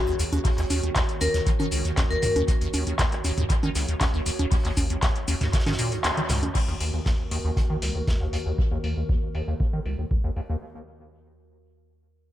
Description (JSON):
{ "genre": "acid house", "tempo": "118 BPM", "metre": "4/4", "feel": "straight", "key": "Eb minor", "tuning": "A4 = 440 Hz", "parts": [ { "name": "vibraphone with hard mallets", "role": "melody", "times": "0.0-2.3 s", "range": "Gb4 to Bb4", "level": "-29 LUFS", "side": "left 3 dB", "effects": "tape echo" }, { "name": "warbly tape-like pad", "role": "sustained chords", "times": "0.0-10.6 s", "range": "Eb2 to Db5", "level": "-34 LUFS", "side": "right 2 dB", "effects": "chorus, built-in reverb, sidechain pumping" }, { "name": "deep acid bass", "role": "riff", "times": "0.1-10.6 s", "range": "Db2 to Eb3", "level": "-28 LUFS", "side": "equal", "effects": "lush chorus, analog delay" }, { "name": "electro analog drum machine", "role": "drums", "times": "0.1-10.5 s", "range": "cabasa, congas, crash cymbal, handclaps, hi-hat, toms", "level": "-29 LUFS", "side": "equal", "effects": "low-pass filter on perc, low-pass filter on hats, low-pass filter on snare, low-pass filter on toms, low-pass filter on cymbals, low-pass filter on room, tape echo" }, { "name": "crunchy breakbeat drum kit", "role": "drums", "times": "0.2-8.5 s", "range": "hi-hat, snare drum", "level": "-38 LUFS", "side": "equal", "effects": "high-pass filter on hats, high-pass filter on snare, high-pass filter on room, tape echo" }, { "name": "electronic kick drum", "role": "drums", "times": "0.4-10.2 s", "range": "none", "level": "-25 LUFS", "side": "equal", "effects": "none" } ], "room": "light reverb, digital ambience", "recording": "echo-heavy mix", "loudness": "-22 LUFS", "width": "side -13 dB against mid", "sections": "0.0-6.5 A section; 6.5-10.6 B section", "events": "drop 0.0-6.5; kick drops out 6.0-6.5; band accent 6.0; filter sweep on acid bass 6.5-10.6", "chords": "0.0 Ebm", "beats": "| 0.45 0.96 1.47 1.97 | 2.48 2.99 3.50 4.01 | 4.52 5.03 5.53 6.04 | 6.55 7.06 7.57 8.08 | 8.58 9.09 9.60 10.11" }